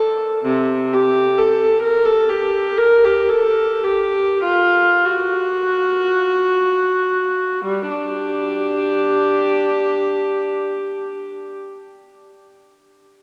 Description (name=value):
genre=classical, free, expressive piece for unaccompanied viola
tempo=18-46 BPM (dotted quarters)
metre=6/8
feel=rubato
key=G minor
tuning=A4 = 439 Hz
part: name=warm viola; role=solo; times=0.0-11.5 s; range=C3 to Bb4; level=-18 LUFS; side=equal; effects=none
room=wet cathedral reverb, RT60 5.3 s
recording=none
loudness=-18 LUFS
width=mono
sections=0.0-7.7 A section; 7.7-11.7 B section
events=slowing down 0.0-7.7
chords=none